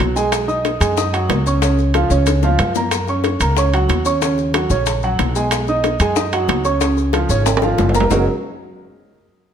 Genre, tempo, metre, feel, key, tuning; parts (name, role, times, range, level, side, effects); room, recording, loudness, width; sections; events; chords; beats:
Afro-Cuban jazz; 185 BPM; 4/4; straight; F# major; A4 = 440 Hz
warm grand piano; accompaniment; 0.0-8.3 s; C#3 to D#6; -18 LUFS; right 3 dB
upright bass; bass; 0.0-8.3 s; F#1 to F#2; -19 LUFS; left 1 dB
bongos; percussion; 0.0-8.2 s; -23 LUFS; left 10 dB
maracas; percussion; 0.0-8.2 s; -30 LUFS; left 12 dB
timbales; percussion; 0.0-8.2 s; -24 LUFS; right 4 dB
moderate large studio reverb, RT60 1.5 s; -14 LUFS; side -8 dB against mid
0.0-8.1 A section; 8.1-9.4 B section
drum fill 2.3-2.9, 7.5-8.1
0.3 B69; 1.6 C#; 2.9 F#6; 4.2 D#m7; 5.5 B69; 6.8 C#; 8.1 F#69
0.00 | 0.32 0.65 0.97 1.30 | 1.62 1.95 2.27 2.59 | 2.92 3.24 3.57 3.89 | 4.22 4.54 4.87 5.19 | 5.51 5.84 6.16 6.49 | 6.81 7.14 7.46 7.78 | 8.11